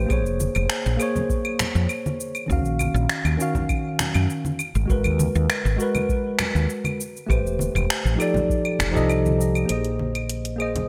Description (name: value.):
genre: sunset chillout.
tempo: 100 BPM.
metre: 4/4.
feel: straight.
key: unclear.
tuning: A4 = 439 Hz.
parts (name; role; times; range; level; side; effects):
tine electric piano; accompaniment; 0.0-10.9 s; Eb3 to F5; -27 LUFS; equal; low-pass filter, digital delay.
woody fretless electric bass; bass; 0.0-10.9 s; E1 to Gb2; -25 LUFS; equal; none.
deep house drum kit; drums; 0.1-10.9 s; claves, finger snaps, hi-hat, shaker; -30 LUFS; equal; overdrive, studio reverb, gated reverb.
electronic kick drum; drums; 0.1-8.9 s; none; -28 LUFS; equal; overdrive, studio reverb.
congas; percussion; 0.4-10.9 s; none; -32 LUFS; equal; none.
room: moderate lush hall reverb, RT60 1.6 s.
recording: bright 1980s-style digital production.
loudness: -23 LUFS.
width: mono.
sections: 0.0-9.7 A section; 9.7-10.9 B section.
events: none.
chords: 0.1 Bbm9; 2.5 Ebm9; 4.6 Abm9; 7.0 Am9; 8.5 F13; 9.7 Bb9sus4.